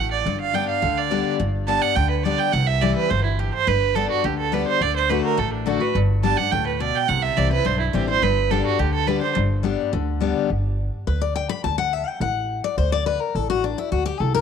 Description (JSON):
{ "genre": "bluegrass", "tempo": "211 BPM", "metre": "4/4", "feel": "straight", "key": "G major", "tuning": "A4 = 440 Hz", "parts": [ { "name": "clear fiddle", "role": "melody", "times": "0.0-9.3 s", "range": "D4 to A5", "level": "-22 LUFS", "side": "right 11 dB", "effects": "none" }, { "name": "picked steel-string acoustic guitar", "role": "accompaniment", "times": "0.0-14.4 s", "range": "G2 to B5", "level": "-24 LUFS", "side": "left 9 dB", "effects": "none" }, { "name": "upright bass", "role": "bass", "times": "0.0-14.4 s", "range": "G1 to D2", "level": "-24 LUFS", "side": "equal", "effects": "none" } ], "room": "light reverb", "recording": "1960s-style stereo with parts hard left and right", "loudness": "-19 LUFS", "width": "side -7 dB against mid", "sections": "0.0-1.4 A section; 1.4-10.5 B section; 10.5-14.4 C section", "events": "steel-string acoustic guitar solo 10.5-14.4", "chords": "0.3 G; 2.5 C; 3.7 G; 4.8 D; 6.0 G; 7.1 C; 8.2 G; 11.6 D", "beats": "| 0.26 0.54 0.83 1.11 | 1.40 1.68 1.97 2.25 | 2.54 2.82 3.11 3.39 | 3.67 3.96 4.24 4.53 | 4.81 5.10 5.38 5.67 | 5.95 6.24 6.52 6.80 | 7.09 7.37 7.66 7.94 | 8.23 8.51 8.79 9.08 | 9.36 9.65 9.93 10.22 | 10.50 10.79 11.07 11.36 | 11.64 11.92 12.21 12.49 | 12.78 13.06 13.35 13.63 | 13.92 14.20" }